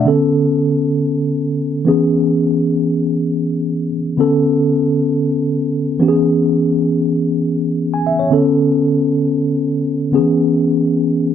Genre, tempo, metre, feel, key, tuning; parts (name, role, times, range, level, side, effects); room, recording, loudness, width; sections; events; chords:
disco; free time; B dorian; A4 = 439 Hz
mellow tine electric piano; solo; 0.0-11.3 s; D3 to G#5; -13 LUFS; equal; medium stereo tremolo
moderate booth ambience, RT60 0.2 s; dry, close 1970s-style studio recording; -14 LUFS; side -9 dB against mid
0.1-11.3 A section
0.1 Bm9; 1.9 C#m7; 4.2 Bm9; 6.0 C#m7; 8.3 Bm9; 10.1 C#m7